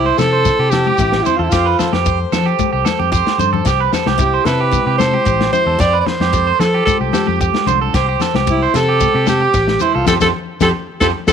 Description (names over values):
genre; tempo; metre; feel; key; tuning
highlife guitar band; 112 BPM; 4/4; straight; C major; A4 = 440 Hz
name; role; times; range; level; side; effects
warm alto saxophone; melody; 0.0-11.3 s; E4 to D5; -17 LUFS; equal; none
picked steel-string acoustic guitar; accompaniment; 0.0-11.3 s; G2 to C5; -24 LUFS; left 12 dB; none
electric guitar at the edge of break-up; arpeggios; 0.0-11.3 s; G4 to C5; -18 LUFS; right 14 dB; slapback echo
fingered electric bass; bass; 0.0-11.3 s; A1 to F3; -19 LUFS; left 1 dB; none
vintage drum kit; drums; 0.2-11.3 s; kick drum, snare drum; -22 LUFS; left 1 dB; none
congas; percussion; 0.2-11.3 s; none; -23 LUFS; left 11 dB; none
shekere; percussion; 0.2-11.3 s; none; -24 LUFS; left 6 dB; none
room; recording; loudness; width
studio reverb; 1960s-style stereo with parts hard left and right; -12 LUFS; side -7 dB against mid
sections
0.0-11.3 A section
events
drum fill 3.3-3.7; band accent 10.1-11.3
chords
0.0 C; 1.5 Fadd9; 3.7 C; 5.8 Fadd9; 7.9 C; 10.1 Fadd9